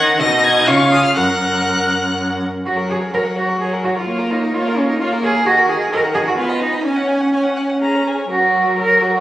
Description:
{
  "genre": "quick classical-period movement for string quartet",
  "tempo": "118-133 BPM",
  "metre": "3/4",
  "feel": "rubato",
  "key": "F# major",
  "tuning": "A4 = 440 Hz",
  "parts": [
    { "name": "rich violin", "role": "melody", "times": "0.0-9.2 s", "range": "C#5 to A#6", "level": "-22 LUFS", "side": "left 3 dB", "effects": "none" },
    { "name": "rich violin", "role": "second line", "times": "0.0-9.2 s", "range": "E#4 to G#5", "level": "-22 LUFS", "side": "equal", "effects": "none" },
    { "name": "clear viola", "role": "accompaniment", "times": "0.0-9.2 s", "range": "D#3 to A#4", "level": "-21 LUFS", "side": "right 1 dB", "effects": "none" },
    { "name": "rich cello", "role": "bass", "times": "0.0-9.2 s", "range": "F#2 to A#4", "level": "-17 LUFS", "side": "right 1 dB", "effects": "none" }
  ],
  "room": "moderate recital hall reverb, RT60 1.5 s",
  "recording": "recorded on a phone in the room, studio reverb",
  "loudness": "-14 LUFS",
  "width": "side -14 dB against mid",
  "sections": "0.0-2.7 A section; 2.7-9.2 A section",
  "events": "none",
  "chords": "0.2 G#m/B; 0.7 C#; 1.2 F#; 4.1 A#m; 5.5 D#m; 6.4 G#m/B; 6.9 C#sus4; 8.3 F#"
}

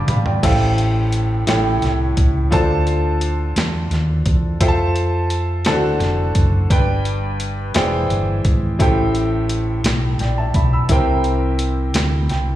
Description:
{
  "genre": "slow gospel",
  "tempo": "57 BPM (dotted quarters)",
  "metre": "6/8",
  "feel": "straight",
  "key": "unclear",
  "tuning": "A4 = 440 Hz",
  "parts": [
    { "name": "warm grand piano", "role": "accompaniment", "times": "0.0-12.6 s", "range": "G2 to E6", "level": "-20 LUFS", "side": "equal", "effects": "none" },
    { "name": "hollow-body short-scale fingered electric bass", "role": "bass", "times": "0.0-12.6 s", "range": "E1 to F2", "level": "-19 LUFS", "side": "equal", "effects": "none" },
    { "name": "boom bap sampler-style drum kit", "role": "drums", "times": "0.1-12.5 s", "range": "crash cymbal, hi-hat, kick drum, snare drum, toms", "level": "-20 LUFS", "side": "equal", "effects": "none" }
  ],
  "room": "light reverb, digital ambience",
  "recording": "live gig heard through the venue's PA, club reverb",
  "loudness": "-15 LUFS",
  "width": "side -14 dB against mid",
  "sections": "0.4-12.6 A section",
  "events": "drum fill 0.0-0.4; grand piano fill 11.9-12.6",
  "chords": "0.4 Am7; 1.5 A7; 2.5 Dm7; 4.6 Fmaj7; 5.7 D7; 6.7 G; 7.8 E7alt; 8.8 Am7; 10.9 C7"
}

